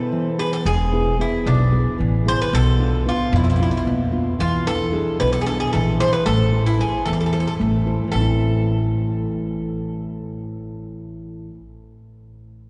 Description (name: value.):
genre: greek folk, Greek bouzouki band.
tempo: 226 BPM (eighths).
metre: 7/8.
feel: straight.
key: A harmonic minor.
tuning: A4 = 440 Hz.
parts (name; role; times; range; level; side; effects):
Greek bouzouki; melody; 0.0-11.5 s; D4 to C5; -27 LUFS; equal; none.
nylon-string guitar; accompaniment; 0.0-11.6 s; A2 to C5; -25 LUFS; equal; none.
upright bass; bass; 0.7-11.6 s; E1 to F2; -24 LUFS; equal; none.
room: wet cathedral reverb, RT60 6.0 s.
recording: recorded in a church or concert hall, nothing above 11.0 kHz.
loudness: -20 LUFS.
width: mono.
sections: 0.0-8.1 A section; 8.1-11.8 B section.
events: none.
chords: 0.0 E; 2.5 Bdim; 4.4 E7; 6.3 Am.